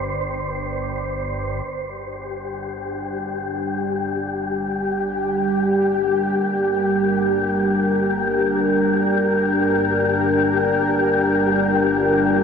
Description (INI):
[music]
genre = dark ambient drone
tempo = free time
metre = none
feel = none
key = G minor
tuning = A4 = 440 Hz
[part]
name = organ-like drone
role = drone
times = 0.0-12.4 s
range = G1 to G2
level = -32 LUFS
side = right 1 dB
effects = ensemble chorus, built-in reverb
[part]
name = wind-like tuned noise texture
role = texture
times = 0.0-12.4 s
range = G4 to C5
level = -23 LUFS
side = left 4 dB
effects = built-in reverb
[part]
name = dark analog pad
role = sustained chords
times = 2.9-12.4 s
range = G3 to Bb4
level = -20 LUFS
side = right 1 dB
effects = chorus
[sound]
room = wet huge ambient reverb, RT60 8.7 s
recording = dreamy mix soaked in reverb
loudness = -18 LUFS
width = side -6 dB against mid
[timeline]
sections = 0.0-1.7 A section; 1.7-12.4 B section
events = fade-in on synth drone 1.7-12.4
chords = 0.0 Gsus4; 1.7 Gm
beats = free time